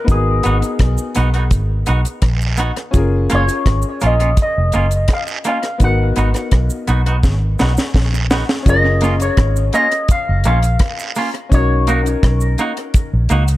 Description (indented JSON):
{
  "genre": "lovers rock reggae",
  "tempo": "84 BPM",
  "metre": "4/4",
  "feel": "straight",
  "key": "F# major",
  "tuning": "A4 = 439 Hz",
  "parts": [
    { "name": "electric guitar with an envelope filter", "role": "melody", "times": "0.0-12.5 s", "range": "G#4 to F#5", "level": "-20 LUFS", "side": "left 1 dB", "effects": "vibrato effect, tape echo" },
    { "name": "clear grand piano", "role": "accompaniment", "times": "0.0-13.6 s", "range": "B3 to A#4", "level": "-24 LUFS", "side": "left 3 dB", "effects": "tape echo" },
    { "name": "vintage muted fingered electric bass", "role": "bass", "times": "0.1-13.6 s", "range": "E#1 to C#2", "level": "-16 LUFS", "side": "equal", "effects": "none" },
    { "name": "deep reggae drum kit", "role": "drums", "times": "0.1-13.6 s", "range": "hi-hat, kick drum, rim click, snare drum", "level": "-17 LUFS", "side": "equal", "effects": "tape echo" },
    { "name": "cabasa and guiro", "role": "percussion", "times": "0.1-13.6 s", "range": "none", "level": "-30 LUFS", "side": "right 6 dB", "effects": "none" },
    { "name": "twangy electric guitar", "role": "stabs", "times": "0.4-13.5 s", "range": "A#3 to F#4", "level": "-21 LUFS", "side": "right 2 dB", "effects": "warbly pitch drift" }
  ],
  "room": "small room ambience",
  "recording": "none",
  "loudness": "-13 LUFS",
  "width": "side -16 dB against mid",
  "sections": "0.0-8.7 A section; 8.7-13.6 B section",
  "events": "drum fill 7.2-8.7",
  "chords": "0.1 G#m7; 2.9 F#maj7; 5.8 G#m7; 8.7 F#maj7; 11.5 Bmaj7"
}